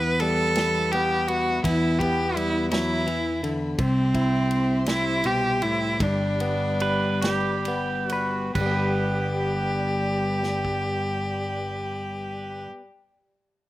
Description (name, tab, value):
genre	acoustic folk-pop ballad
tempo	43-56 BPM (dotted quarters)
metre	6/8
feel	straight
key	G major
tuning	A4 = 440 Hz
part	clear cello	melody	0.0-12.7 s	C4 to B4	-25 LUFS	equal	slapback echo
part	direct-recorded clean electric guitar	accompaniment	0.0-12.9 s	G2 to B4	-28 LUFS	left 2 dB	none
part	dark studio string section	sustained chords	0.0-12.7 s	G3 to C6	-37 LUFS	left 1 dB	none
part	fingered electric bass	bass	0.0-12.7 s	G1 to E2	-29 LUFS	equal	none
part	natural country drum kit	drums	0.2-10.9 s	crash cymbal, kick drum, ride cymbal, snare drum	-32 LUFS	right 1 dB	none
part	pedal steel guitar	second line	6.8-12.7 s	G4 to B4	-31 LUFS	right 5 dB	slapback echo
room	little or no reverb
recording	recorded outdoors, with no room sound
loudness	-22 LUFS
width	side -16 dB against mid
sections	0.0-8.6 A section; 8.6-13.7 B section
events	slowing down 3.8-8.6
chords	0.0 Em; 3.8 C; 6.0 G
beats	0.56 | 1.64 2.71 | 3.79 4.87 | 6.00 7.22 | 8.55 9.95 | 11.34 12.73